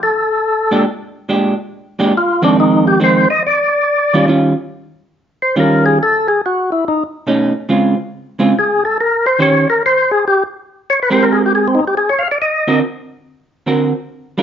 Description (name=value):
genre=jazz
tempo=140 BPM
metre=4/4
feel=swing 66% on 8ths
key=Bb mixolydian, Eb mixolydian from 4.3 s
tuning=A4 = 438 Hz
part: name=percussive tonewheel organ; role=melody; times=0.0-12.8 s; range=C4 to F5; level=-13 LUFS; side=left 1 dB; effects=slow rotary speaker
part: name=vintage hollow-body jazz guitar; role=accompaniment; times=0.7-14.4 s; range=F2 to C5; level=-14 LUFS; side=right 2 dB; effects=none
room=moderate studio reverb, RT60 0.9 s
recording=dark, warm production, nothing above 7.5 kHz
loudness=-12 LUFS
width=side -9 dB against mid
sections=0.0-4.3 A section; 4.3-14.4 A section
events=tonewheel organ solo 0.0-14.4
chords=0.0 F69 (rootless); 0.8 Bb13; 2.6 Fm7; 3.4 Eb9; 6.0 N.C.; 6.8 B9; 7.7 Dbmaj7; 9.4 Eb6; 11.1 Abmaj9; 12.8 D7b13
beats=0.42 | 0.85 1.28 1.70 2.13 | 2.56 2.99 3.41 3.84 | 4.27 4.70 5.12 5.55 | 5.98 6.41 6.83 7.26 | 7.69 8.11 8.54 8.97 | 9.39 9.82 10.25 10.68 | 11.10 11.53 11.96 12.38 | 12.81 13.24 13.66 14.09